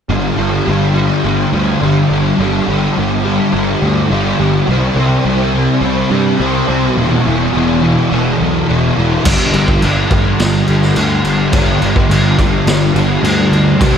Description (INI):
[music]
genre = rock, shoegaze and dream pop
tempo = 105 BPM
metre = 4/4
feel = straight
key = G major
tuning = A4 = 440 Hz
[part]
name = fuzz guitar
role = riff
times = 0.1-14.0 s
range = E2 to C4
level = -12 LUFS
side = equal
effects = distortion, ensemble chorus
[part]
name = fuzz picked electric bass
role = bass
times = 0.1-14.0 s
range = E1 to G2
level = -18 LUFS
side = equal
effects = overdrive
[part]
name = raw garage drum kit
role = drums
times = 9.3-13.9 s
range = crash cymbal, kick drum, snare drum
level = -15 LUFS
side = equal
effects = none
[sound]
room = wet church reverb, RT60 3.9 s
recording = dreamy mix soaked in reverb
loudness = -11 LUFS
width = side -8 dB against mid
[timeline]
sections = 0.1-9.3 A section; 9.3-14.0 B section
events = none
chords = 0.1 G5; 4.7 C5; 7.0 E5; 9.3 G5